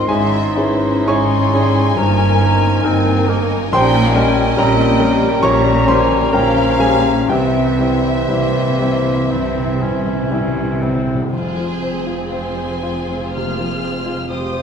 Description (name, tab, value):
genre	classical, romantic movement for piano and orchestra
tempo	55-72 BPM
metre	4/4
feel	rubato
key	F minor from 3.7 s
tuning	A4 = 437 Hz
part	rich studio violin section	melody	0.0-14.6 s	Fb5 to F6	-28 LUFS	left 3 dB	none
part	warm grand piano	melody	0.0-14.6 s	Bb1 to Db6	-19 LUFS	left 2 dB	none
part	clear clarinet	second line	0.0-11.3 s	Bb3 to F4	-25 LUFS	left 1 dB	none
part	dark cor anglais	second line	0.0-11.0 s	Ab4 to Db5	-25 LUFS	right 2 dB	none
part	rich studio violin section	second line	0.0-14.6 s	F4 to G5	-26 LUFS	left 2 dB	none
part	silver concert flute	second line	0.0-11.0 s	E5 to C6	-25 LUFS	left 4 dB	none
part	mellow bassoon	accompaniment	0.0-10.9 s	Eb3 to Ab3	-25 LUFS	right 1 dB	none
part	rich studio viola section	accompaniment	0.0-14.6 s	Ab3 to Ab4	-26 LUFS	equal	none
part	mellow French horn section	sustained chords	0.0-11.0 s	E3 to Fb4	-23 LUFS	left 4 dB	none
part	rich studio cello section	bass	0.1-14.6 s	F2 to C3	-22 LUFS	right 3 dB	none
part	warm studio double bass section	bass	0.1-14.6 s	F1 to C2	-22 LUFS	right 4 dB	none
part	timpani	percussion	7.3-11.3 s	C3	-25 LUFS	equal	none
room	wet recital hall reverb, RT60 1.6 s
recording	minimal, uncompressed stereo recording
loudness	-13 LUFS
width	side -7 dB against mid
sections	0.0-11.3 A section; 11.3-14.6 B section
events	timpani fill 7.3-11.3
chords	0.1 Dbm/Ab; 2.0 Eb7/G; 3.7 Gdim/Bb; 7.3 C; 11.3 Fm